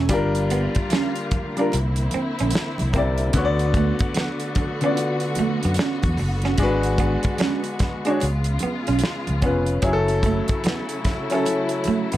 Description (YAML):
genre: R&B, neo-soul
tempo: 74 BPM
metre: 4/4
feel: swing 64% on 16ths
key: F# minor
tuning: A4 = 440 Hz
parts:
  - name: clean electric guitar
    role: second line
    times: 0.0-12.2 s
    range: A3 to D4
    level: -25 LUFS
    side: right 6 dB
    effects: vibrato effect
  - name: warm upright piano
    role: accompaniment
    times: 0.0-12.2 s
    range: C3 to D5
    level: -24 LUFS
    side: left 2 dB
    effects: none
  - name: warm studio string section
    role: sustained chords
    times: 0.0-12.2 s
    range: C#3 to F#4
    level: -29 LUFS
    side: left 1 dB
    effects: none
  - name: fingered electric bass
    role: bass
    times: 0.0-12.2 s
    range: E1 to F#2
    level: -23 LUFS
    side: equal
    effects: none
  - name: damped 70s drum kit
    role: drums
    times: 0.1-12.2 s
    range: hi-hat, kick drum, snare drum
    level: -24 LUFS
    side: equal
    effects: none
  - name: congas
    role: percussion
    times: 0.1-12.1 s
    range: none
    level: -34 LUFS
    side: right 2 dB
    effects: none
room: light reverb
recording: none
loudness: -19 LUFS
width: side -14 dB against mid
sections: 0.0-12.2 A section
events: none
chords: 0.1 Gm7; 1.7 C9; 3.3 D6; 6.6 G#m7b5; 8.2 C#7; 9.8 F#m7